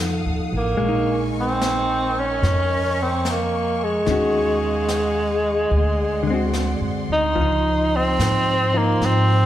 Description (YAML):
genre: jazz ballad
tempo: 73 BPM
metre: 4/4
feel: swing 66% on 8ths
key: unclear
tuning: A4 = 441 Hz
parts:
  - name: hollow-body jazz guitar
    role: accompaniment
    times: 0.0-9.5 s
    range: D3 to Gb4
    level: -25 LUFS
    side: left 1 dB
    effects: none
  - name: warm symphonic string section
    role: sustained chords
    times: 0.0-9.5 s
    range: F4 to Eb6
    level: -31 LUFS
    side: equal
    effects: none
  - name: upright bass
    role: bass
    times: 0.0-9.5 s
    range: A1 to Ab2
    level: -23 LUFS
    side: equal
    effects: none
  - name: breathy tenor saxophone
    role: melody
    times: 0.6-9.5 s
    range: Ab3 to Eb4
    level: -21 LUFS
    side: equal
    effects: none
  - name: jazz brush drum kit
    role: drums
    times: 0.8-9.5 s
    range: brushed snare drum, hi-hat, snare drum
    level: -32 LUFS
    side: equal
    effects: none
room: moderate concert hall reverb, RT60 2.1 s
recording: recorded in a church or concert hall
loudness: -18 LUFS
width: side -12 dB against mid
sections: 0.0-9.5 A section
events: none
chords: 0.0 F7b9; 0.8 Bbm11; 4.1 Ebm11; 5.7 D7#11; 7.4 Dbmaj9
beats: | 0.79 1.61 2.43 3.25 | 4.07 4.89 5.71 6.54 | 7.36 8.19 9.02